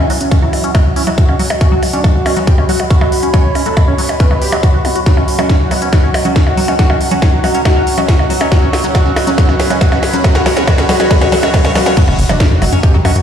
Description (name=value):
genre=psychedelic trance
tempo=139 BPM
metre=4/4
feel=straight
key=unclear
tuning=A4 = 441 Hz
part: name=wide unison lead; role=melody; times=0.0-13.2 s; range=C#4 to C#5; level=-18 LUFS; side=equal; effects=phaser, sidechain pumping, digital delay
part: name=overtone-sweeping drone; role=sustained chords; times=0.0-13.2 s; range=F#3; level=-22 LUFS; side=right 4 dB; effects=chorus, built-in reverb, sidechain pumping
part: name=liquid acid bass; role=riff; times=0.0-13.1 s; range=F#3 to F#4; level=-19 LUFS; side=equal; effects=phaser, auto-pan, sidechain pumping, digital delay
part: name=warbly tape-like pad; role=texture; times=0.0-12.0 s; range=F#4 to B5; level=-24 LUFS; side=left 1 dB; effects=chorus, built-in reverb, sidechain pumping
part: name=techno drum kit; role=drums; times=0.1-13.2 s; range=crash cymbal, hi-hat, percussion blips, snare drum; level=-18 LUFS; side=equal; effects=none
part: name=electronic kick drum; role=drums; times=0.3-12.9 s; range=none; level=-10 LUFS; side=equal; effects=none
part: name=formant-sweep wobble bass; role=second line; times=2.3-11.9 s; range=B3 to C#4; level=-30 LUFS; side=right 1 dB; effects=none
part: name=riser and impact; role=sound effects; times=7.9-13.2 s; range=none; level=-24 LUFS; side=equal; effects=none
part: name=tight sequencer bass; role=bass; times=12.1-13.2 s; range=F#1 to F#2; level=-12 LUFS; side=equal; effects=tube saturation
room=moderate digital room reverb, RT60 1.1 s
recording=played on a big sound system in a bare room, stone room reverb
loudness=-9 LUFS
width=side -8 dB against mid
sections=0.0-12.0 A section; 12.0-13.2 B section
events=build-up 0.0-12.0; filter sweep on acid bass 0.0-12.0; filter sweep on synth drone 0.0-12.0; drum fill 5.1-12.0; drop 12.0-13.2; impact 12.0-13.2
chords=0.0 F#5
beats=0.32 0.75 1.18 | 1.61 2.04 2.47 2.90 | 3.34 3.77 4.20 4.63 | 5.06 5.50 5.93 6.36 | 6.79 7.22 7.65 8.09 | 8.52 8.95 9.38 9.81 | 10.24 10.68 11.11 11.54 | 11.97 12.40 12.83